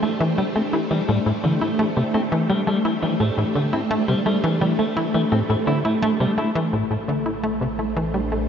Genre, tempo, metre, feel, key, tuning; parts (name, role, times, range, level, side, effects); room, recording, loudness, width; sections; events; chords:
ambient, sequencer-driven space music; 85 BPM; 4/4; straight; A minor; A4 = 440 Hz
phased string machine; sustained chords; 0.0-8.5 s; A3 to C5; -24 LUFS; equal; ensemble chorus, phaser
electric guitar at the edge of break-up; arpeggios; 0.0-6.5 s; E3 to E4; -26 LUFS; left 1 dB; auto-pan, ping-pong delay
tight sequencer bass; riff; 0.0-8.4 s; A2 to E4; -22 LUFS; equal; ping-pong delay
fat analog bass; bass; 6.7-8.5 s; A1; -32 LUFS; right 1 dB
wet huge ambient reverb, RT60 8.2 s; dark, warm production, nothing above 7.5 kHz; -19 LUFS; side -8 dB against mid
0.0-6.7 A section; 6.7-8.5 B section
filter sweep on analog synth bass 0.0-6.7
0.0 Am